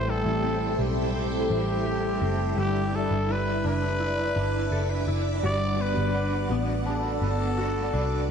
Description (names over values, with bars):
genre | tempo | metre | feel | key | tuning
dream pop | 84 BPM | 4/4 | straight | unclear | A4 = 439 Hz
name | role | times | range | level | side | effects
growling trumpet | melody | 0.0-8.3 s | G4 to D5 | -30 LUFS | equal | digital delay
raw garage guitar | accompaniment | 0.0-8.3 s | A2 to B4 | -35 LUFS | right 4 dB | overdrive, tremolo, lush chorus
string machine, full ensemble | sustained chords | 0.0-8.3 s | A4 to D6 | -31 LUFS | equal | phaser, ensemble chorus
semi-hollow electric guitar | arpeggios | 0.0-8.3 s | A2 to B4 | -31 LUFS | left 2 dB | ensemble chorus, digital delay
vintage muted picked electric bass | bass | 0.0-8.3 s | F#1 to C2 | -28 LUFS | equal | none
worn celesta | texture | 0.1-8.3 s | C5 to A5 | -42 LUFS | left 5 dB | none
room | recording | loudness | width
moderate plate reverb, RT60 2.5 s | dark, warm production | -24 LUFS | side -7 dB against mid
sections
0.0-8.3 A section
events
none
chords
0.0 Am7; 2.6 Em7; 5.4 Gmaj7